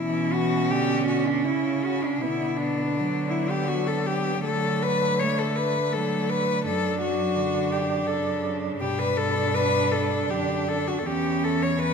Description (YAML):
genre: classical, lyrical piece for cello ensemble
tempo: 82 BPM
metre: 3/4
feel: uneven beats, rubato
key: B minor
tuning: A4 = 440 Hz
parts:
  - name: warm cello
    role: melody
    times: 0.0-11.9 s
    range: D4 to C#5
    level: -26 LUFS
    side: left 5 dB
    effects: none
  - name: dark cello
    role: second line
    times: 0.0-11.9 s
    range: A3 to D4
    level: -28 LUFS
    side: right 7 dB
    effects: none
  - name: warm cello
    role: accompaniment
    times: 0.0-11.9 s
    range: B2 to A3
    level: -31 LUFS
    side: left 1 dB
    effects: none
  - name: dark cello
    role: bass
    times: 0.0-11.9 s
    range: E2 to D3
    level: -30 LUFS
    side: right 2 dB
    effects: none
room: wet recital hall reverb, RT60 1.5 s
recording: minimal, uncompressed stereo recording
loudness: -22 LUFS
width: side -6 dB against mid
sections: 0.0-11.9 A section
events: none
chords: 0.0 Bm; 4.5 D; 6.7 D/F#; 8.8 G; 11.1 C#dim/E